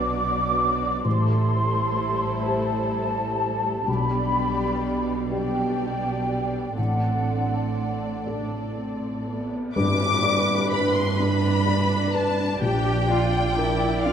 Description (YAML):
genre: cinematic, emotional film score for orchestra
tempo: 42 BPM (dotted quarters)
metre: 6/8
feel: rubato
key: unclear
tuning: A4 = 440 Hz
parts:
  - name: dark symphonic violin section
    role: second line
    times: 0.0-14.1 s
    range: F#4 to D6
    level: -32 LUFS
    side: left 2 dB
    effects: none
  - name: mellow large flute ensemble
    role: second line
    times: 0.0-8.2 s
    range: F#5 to D6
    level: -27 LUFS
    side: left 1 dB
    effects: none
  - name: dark symphonic viola section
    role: accompaniment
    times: 0.0-14.1 s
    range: F#3 to D5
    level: -31 LUFS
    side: right 1 dB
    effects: none
  - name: felt-muted upright piano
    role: accompaniment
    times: 0.0-14.1 s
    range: A1 to D5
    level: -28 LUFS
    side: left 1 dB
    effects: none
  - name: rich symphonic cello section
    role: bass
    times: 0.0-14.1 s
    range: A2 to G4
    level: -30 LUFS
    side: right 2 dB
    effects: none
  - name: warm studio double bass section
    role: bass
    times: 0.0-14.1 s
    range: A1 to G2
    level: -29 LUFS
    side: right 3 dB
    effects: none
  - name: cymbal swell and tam-tam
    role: percussion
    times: 6.8-13.5 s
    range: none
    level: -32 LUFS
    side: equal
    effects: none
  - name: warm symphonic violin section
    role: melody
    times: 9.8-14.1 s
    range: F5 to D6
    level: -27 LUFS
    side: left 2 dB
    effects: none
room: wet scoring stage reverb, RT60 1.9 s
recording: none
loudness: -21 LUFS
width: side -8 dB against mid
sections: 0.0-9.8 A section; 9.8-14.1 A section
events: band accent 9.8-10.7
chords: 0.0 Bm; 1.1 Am7; 3.9 G/B; 6.8 D7/A; 9.8 G; 12.6 Bb